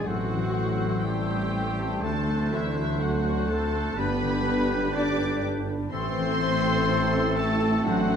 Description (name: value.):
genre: classical.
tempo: 62 BPM.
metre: 4/4.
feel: rubato.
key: unclear.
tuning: A4 = 440 Hz.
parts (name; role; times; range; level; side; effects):
warm symphonic violin section; melody; 0.0-8.2 s; E5 to D6; -33 LUFS; left 3 dB; none.
clear oboe; second line; 0.0-8.2 s; A4 to C5; -38 LUFS; right 1 dB; none.
warm symphonic violin section; second line; 0.0-8.2 s; E4 to D5; -36 LUFS; left 2 dB; none.
mellow bassoon; accompaniment; 0.0-8.2 s; G3 to A3; -37 LUFS; right 1 dB; none.
warm studio viola section; accompaniment; 0.0-8.2 s; E3 to E4; -34 LUFS; right 2 dB; none.
dark French horn section; sustained chords; 0.0-8.2 s; E3 to D4; -32 LUFS; left 4 dB; none.
concert harp; arpeggios; 0.0-8.2 s; E2 to C6; -33 LUFS; left 10 dB; none.
clear trumpet; stabs; 0.0-8.2 s; E4 to D5; -34 LUFS; right 1 dB; none.
mellow tuba; bass; 0.0-8.2 s; G1 to D2; -32 LUFS; right 3 dB; none.
rich symphonic cello section; bass; 0.0-8.2 s; E3 to D4; -34 LUFS; right 3 dB; none.
rich symphonic double bass section; bass; 0.0-8.2 s; G1 to D2; -32 LUFS; right 3 dB; none.
large flute ensemble; second line; 0.1-8.2 s; E6 to G6; -38 LUFS; left 2 dB; none.
warm clarinet; second line; 0.1-8.2 s; C4 to E4; -37 LUFS; equal; none.
room: wet recital hall reverb, RT60 1.8 s.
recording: dark, warm production.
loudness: -23 LUFS.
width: side -7 dB against mid.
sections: 0.0-8.2 A section.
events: none.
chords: 0.1 Am; 2.0 D7; 4.0 G; 5.9 Am.